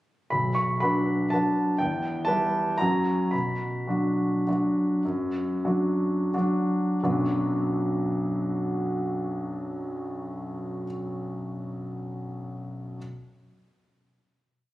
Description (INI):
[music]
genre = classical, piano waltz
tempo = 82-129 BPM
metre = 3/4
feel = rubato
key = B minor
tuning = A4 = 439 Hz
[part]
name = clear concert grand piano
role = solo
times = 0.3-13.0 s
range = B1 to C#6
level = -25 LUFS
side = equal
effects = none
[sound]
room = wet recital hall reverb, RT60 1.7 s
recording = recorded on a phone in the room, club reverb, compression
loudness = -24 LUFS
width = side -16 dB against mid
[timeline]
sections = 0.3-7.0 A section; 7.0-10.9 final chord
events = slowing down 2.5-7.0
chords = 0.3 Bm; 1.8 Em; 2.8 F#; 3.3 Bm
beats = | 0.31 0.82 1.31 | 1.79 2.27 2.79 | 3.33 3.88 4.47 | 5.06 5.66 6.33 | 7.03 7.66 8.30 | 8.95 9.59 10.25